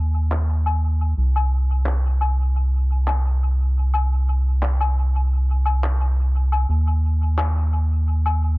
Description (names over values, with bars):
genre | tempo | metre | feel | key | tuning
sunset chillout | 87 BPM | 4/4 | swing 54% on 16ths | unclear | A4 = 439 Hz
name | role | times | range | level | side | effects
round analog bass | bass | 0.0-8.6 s | C2 to Eb2 | -18 LUFS | equal | none
handclaps and woodblock | drums | 0.3-8.4 s | none | -28 LUFS | left 4 dB | low-pass filter on snare, low-pass filter on perc, low-pass filter on room, dub echo
room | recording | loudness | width
little or no reverb | echo-heavy mix | -18 LUFS | side -22 dB against mid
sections
0.0-8.6 A section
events
none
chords
none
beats
0.48 | 1.17 1.86 2.55 3.24 | 3.93 4.62 5.31 6.00 | 6.69 7.38 8.07